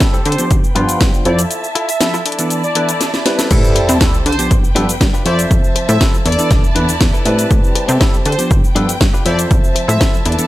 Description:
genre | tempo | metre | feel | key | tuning
filtered disco house | 120 BPM | 4/4 | straight | A minor | A4 = 440 Hz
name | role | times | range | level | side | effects
barky tine electric piano | accompaniment | 0.0-10.5 s | E3 to E5 | -20 LUFS | equal | phaser, vintage 12-bit sampler grit, sidechain pumping, low-pass filter
warm symphonic violin section | sustained chords | 0.0-10.5 s | C4 to A5 | -24 LUFS | right 1 dB | sidechain pumping, low-pass filter
direct-recorded clean electric guitar | riff | 0.0-10.5 s | C4 to A5 | -24 LUFS | left 2 dB | vintage 12-bit sampler grit, sidechain pumping, low-pass filter
electronic kick drum | drums | 0.0-10.1 s | none | -14 LUFS | equal | none
house drum kit | drums | 0.0-10.5 s | crash cymbal, hi-hat, shaker, snare drum | -19 LUFS | left 1 dB | sidechain pumping on hats, sidechain pumping on perc, sidechain pumping on cymbals
analog synth brass | melody | 0.3-10.3 s | C5 to E5 | -23 LUFS | equal | chorus, sidechain pumping, low-pass filter, ping-pong delay
plucky analog bass | bass | 0.3-10.4 s | E1 to D3 | -17 LUFS | equal | sidechain pumping, low-pass filter
sub drop | sound effects | 3.5-5.5 s | none | -22 LUFS | equal | none
room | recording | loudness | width
light reverb, digital ambience | none | -11 LUFS | side -16 dB against mid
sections
0.0-3.5 A section; 3.5-10.5 B section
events
break 1.5-3.5; drum fill 3.0-3.5; drop 3.5-10.5; impact 3.5-5.5; clean electric guitar fill 6.5-7.5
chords
0.0 Am7; 0.5 G7; 1.3 Fmaj7; 2.3 E7sus4; 3.5 Am7; 4.5 G7; 5.3 Fmaj7; 6.3 E7sus4; 7.5 Am7; 8.5 G7; 9.3 Fmaj7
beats
0.01 0.51 1.01 | 1.51 2.01 2.51 3.01 | 3.51 4.01 4.51 5.01 | 5.51 6.01 6.51 7.01 | 7.51 8.01 8.51 9.01 | 9.51 10.01

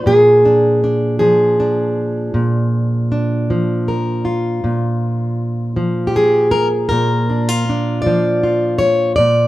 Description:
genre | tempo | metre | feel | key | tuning
acoustic country blues, solo or duo | 53 BPM (dotted quarters) | 12/8 | straight | Bb mixolydian | A4 = 440 Hz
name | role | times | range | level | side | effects
fingerpicked plugged-in steel-string acoustic guitar | solo | 0.0-9.5 s | Bb2 to D5 | -13 LUFS | equal | none
room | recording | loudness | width
moderate studio reverb, RT60 0.8 s | band playing live in one room | -13 LUFS | side -16 dB against mid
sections
0.0-9.5 A section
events
none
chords
0.0 Bb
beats
| 0.06 1.20 2.33 3.47 | 4.61 5.75 6.89 8.03 | 9.17

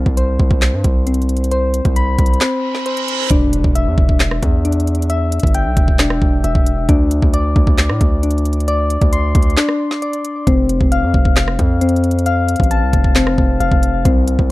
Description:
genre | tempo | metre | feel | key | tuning
hip hop, trap | 134 BPM | 4/4 | half-time | E phrygian | A4 = 439 Hz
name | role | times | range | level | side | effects
soft electric-piano-like synth keys | arpeggios | 0.0-14.5 s | C4 to C6 | -18 LUFS | left 3 dB | chorus, tape echo
distorted 808-style bass | bass | 0.0-14.5 s | E1 to A2 | -17 LUFS | equal | distortion
trap drum kit | drums | 0.1-14.5 s | handclaps, hi-hat, kick drum, rim click, snare drum | -15 LUFS | equal | none
reverse cymbal and impact | sound effects | 2.6-5.1 s | none | -24 LUFS | right 3 dB | none
room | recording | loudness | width
little or no reverb | dark, warm production | -13 LUFS | side -18 dB against mid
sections
0.0-3.3 A section; 3.3-14.5 B section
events
break 2.4-3.3, 9.6-10.5; reverse cymbal 2.6-3.3; impact 3.3-5.1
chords
0.0 C5; 3.3 Em7; 6.9 D5; 10.5 F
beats
0.17 0.62 1.07 | 1.51 1.96 2.41 2.86 | 3.31 3.75 4.20 4.65 | 5.10 5.54 5.99 6.44 | 6.89 7.34 7.78 8.23 | 8.68 9.13 9.57 10.02 | 10.47 10.92 11.37 11.81 | 12.26 12.71 13.16 13.60 | 14.05 14.50

